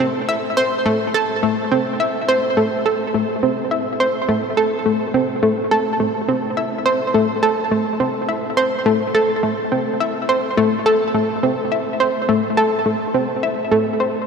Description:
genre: ambient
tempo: 105 BPM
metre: 4/4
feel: straight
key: A minor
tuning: A4 = 439 Hz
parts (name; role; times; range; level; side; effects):
- analog pluck; solo; 0.0-14.1 s; A3 to E5; -16 LUFS; equal; chorus, tape echo
room: wet huge ambient reverb, RT60 7.8 s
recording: dreamy mix soaked in reverb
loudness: -16 LUFS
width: side -6 dB against mid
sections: 0.0-14.3 A section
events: none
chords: none

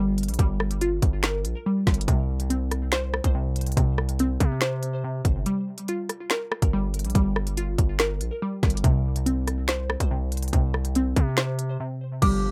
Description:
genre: hip hop, drill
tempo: 142 BPM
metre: 4/4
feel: half-time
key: G minor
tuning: A4 = 440 Hz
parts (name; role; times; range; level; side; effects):
- glassy wavetable pluck; arpeggios; 0.0-12.5 s; C3 to C5; -30 LUFS; equal; chorus, low-pass filter, tape echo
- distorted 808-style bass; bass; 0.0-12.5 s; G1 to C3; -29 LUFS; equal; distortion
- drill drum kit; drums; 0.2-12.3 s; crash cymbal, finger snaps, hi-hat, kick drum, rim click, snare drum; -26 LUFS; equal; none
- dark detuned synth bell; second line; 12.2-12.5 s; D6; -30 LUFS; equal; chorus, phaser
- mellow woodwind section; sustained chords; 12.2-12.5 s; F3 to G4; -33 LUFS; equal; none
room: little or no reverb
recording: none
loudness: -25 LUFS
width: mono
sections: 0.0-12.2 A section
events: break 5.5-5.9, 11.8-12.2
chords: 0.0 Gm7; 2.1 C5; 5.5 Gm7; 8.8 N.C.

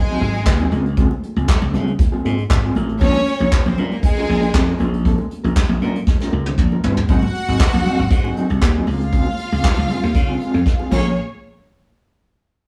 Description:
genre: disco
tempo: 118 BPM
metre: 4/4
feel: straight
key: Bb minor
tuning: A4 = 441 Hz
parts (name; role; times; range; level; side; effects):
- rich symphonic violin section; second line; 0.0-11.2 s; Ab3 to Gb5; -26 LUFS; equal; none
- mellow electric guitar; accompaniment; 0.1-11.1 s; Gb3 to C5; -26 LUFS; equal; tremolo
- soft brush drum kit; drums; 0.1-11.0 s; crash cymbal, handclaps, hi-hat, kick drum, snare drum, toms; -20 LUFS; equal; none
- slap bass; bass; 0.2-11.2 s; G1 to Db3; -22 LUFS; equal; none
- congas; percussion; 0.5-11.2 s; none; -30 LUFS; equal; none
room: moderate studio reverb, RT60 0.9 s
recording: band playing live in one room, small room ambience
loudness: -18 LUFS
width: mono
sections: 0.0-7.1 A section; 7.1-11.2 B section; 11.2-12.7 C section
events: drum fill 6.1-7.1, 10.7-11.2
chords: 0.0 Ab7; 0.7 Dbmaj7; 3.0 Bbm7; 7.1 Ab7; 8.9 Dbmaj7; 10.9 Bbm7; 11.2 N.C.

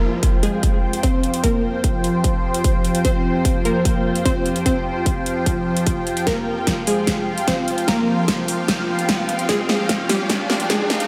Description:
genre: heavy wobble dubstep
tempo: 149 BPM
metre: 4/4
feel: half-time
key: F minor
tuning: A4 = 438 Hz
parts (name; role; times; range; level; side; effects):
- unison pluck; melody; 0.0-11.0 s; G3 to C5; -26 LUFS; equal; lush chorus, tape echo
- lush unison pad; sustained chords; 0.0-11.1 s; F3 to G5; -26 LUFS; equal; chorus, phaser, sidechain pumping
- deep dark ambient pad; texture; 1.7-11.1 s; F4 to G5; -31 LUFS; equal; chorus, built-in reverb, sidechain pumping
- big-room dance drum kit; drums; 0.2-11.1 s; hi-hat, snare drum; -25 LUFS; equal; none
- electronic kick drum; drums; 0.2-10.8 s; none; -24 LUFS; equal; none
- riser; sound effects; 7.8-11.1 s; none; -34 LUFS; equal; none
room: wet lush hall reverb, RT60 2.0 s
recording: dreamy mix soaked in reverb, high-pass filter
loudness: -20 LUFS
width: mono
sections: 0.0-11.1 A section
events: build-up 0.0-11.1; filter sweep 0.0-11.1; drum fill 6.3-11.1; riser 7.8-11.1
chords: 0.0 Fmadd9

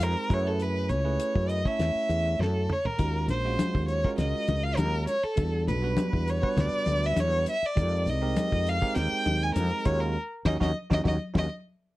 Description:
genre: electric jazz fusion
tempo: 100 BPM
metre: 4/4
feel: straight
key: unclear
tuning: A4 = 439 Hz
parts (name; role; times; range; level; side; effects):
- rich violin; melody; 0.0-11.5 s; A4 to Ab5; -29 LUFS; equal; slapback echo
- bell-like tine electric piano; accompaniment; 0.0-11.5 s; G3 to Db5; -33 LUFS; right 5 dB; none
- woody fretless electric bass; bass; 0.0-11.5 s; Bb1 to Gb2; -28 LUFS; equal; none
- damped 70s drum kit; drums; 0.0-11.5 s; hi-hat, kick drum, snare drum, splash cymbal, toms; -29 LUFS; equal; none
- congas; percussion; 3.0-11.5 s; none; -32 LUFS; left 2 dB; none
room: little or no reverb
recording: dry, close 1970s-style studio recording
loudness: -24 LUFS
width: side -18 dB against mid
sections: 0.0-12.0 A section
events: drum fill 2.4-3.0; band accent 10.2-12.0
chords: 0.3 Gbm11; 3.0 Ebm11; 5.4 Em11; 7.8 Fm11; 9.9 Ebm11

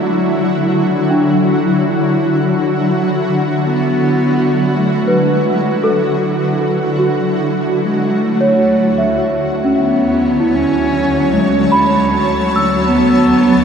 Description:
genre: ambient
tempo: 78 BPM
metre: 3/4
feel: straight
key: D lydian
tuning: A4 = 441 Hz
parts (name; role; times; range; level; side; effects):
- dark cello; melody; 0.0-13.6 s; E3 to C#4; -18 LUFS; right 1 dB; shimmer reverb
- shimmering ambient pad; sustained chords; 0.0-13.6 s; D2 to A5; -15 LUFS; equal; chorus, built-in reverb, shimmer reverb
- celesta; arpeggios; 1.1-13.6 s; C#4 to E6; -17 LUFS; equal; shimmer reverb, ping-pong delay
room: wet huge ambient reverb, RT60 7.4 s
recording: dark, warm production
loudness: -12 LUFS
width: side -7 dB against mid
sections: 0.0-13.6 A section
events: fade-in on cello 0.0-13.6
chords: 0.0 D

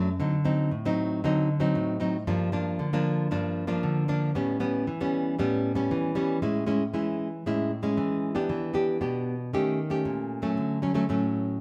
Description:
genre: samba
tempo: 116 BPM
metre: 4/4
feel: straight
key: A major from 6.4 s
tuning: A4 = 440 Hz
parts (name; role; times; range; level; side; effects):
- nylon-string guitar; solo; 0.0-11.6 s; F#2 to G4; -27 LUFS; equal; none
room: moderate large studio reverb, RT60 1.0 s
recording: band playing live in one room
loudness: -27 LUFS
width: mono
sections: 0.0-6.4 A section; 6.4-11.6 B section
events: none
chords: 0.2 D7b9; 2.3 Gm7; 4.3 A9; 6.4 Amaj7; 8.5 Em7; 9.5 D#7#11; 10.6 Dmaj7

